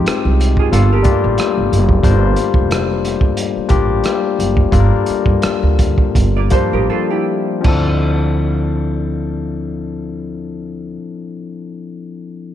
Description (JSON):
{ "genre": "R&B, neo-soul", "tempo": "77-91 BPM", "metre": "4/4", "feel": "swing 55% on 16ths", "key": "D minor", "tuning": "A4 = 440 Hz", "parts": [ { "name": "barky tine electric piano", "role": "accompaniment", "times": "0.0-12.5 s", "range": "F3 to C5", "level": "-18 LUFS", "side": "left 7 dB", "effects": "overdrive" }, { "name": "upright bass", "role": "bass", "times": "0.0-11.0 s", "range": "F1 to G2", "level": "-17 LUFS", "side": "right 1 dB", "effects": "none" }, { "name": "crunchy breakbeat drum kit", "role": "drums", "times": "0.1-7.8 s", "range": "crash cymbal, hi-hat, kick drum, rim click", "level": "-17 LUFS", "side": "right 1 dB", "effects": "none" }, { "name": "vintage hollow-body jazz guitar", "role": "second line", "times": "0.6-1.9, 6.4-7.6 s", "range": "E4 to D5", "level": "-22 LUFS", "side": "right 13 dB", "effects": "analog chorus" } ], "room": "light reverb", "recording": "none", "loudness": "-13 LUFS", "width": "side -11 dB against mid", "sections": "0.0-7.7 A section; 7.7-10.8 B section", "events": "slowing down 2.0-7.7; break 6.9-7.7", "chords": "0.0 Fm9; 0.7 Gm9; 7.7 Dm9" }